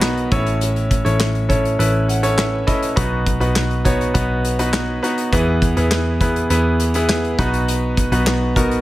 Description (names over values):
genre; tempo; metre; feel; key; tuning
piano-driven pop; 102 BPM; 4/4; straight; B major; A4 = 439 Hz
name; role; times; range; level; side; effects
clear concert grand piano; accompaniment; 0.0-8.8 s; A2 to B5; -19 LUFS; equal; none
vintage muted picked electric bass; bass; 0.0-8.8 s; A1 to E2; -20 LUFS; equal; none
loose indie drum kit; drums; 0.0-8.8 s; handclaps, hi-hat, kick drum, snare drum; -21 LUFS; equal; none
room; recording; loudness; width
light reverb, small room ambience; none; -15 LUFS; side -16 dB against mid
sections
0.0-8.8 A section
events
grand piano fill 1.8-3.0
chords
0.3 A; 3.0 B; 5.3 E; 7.4 B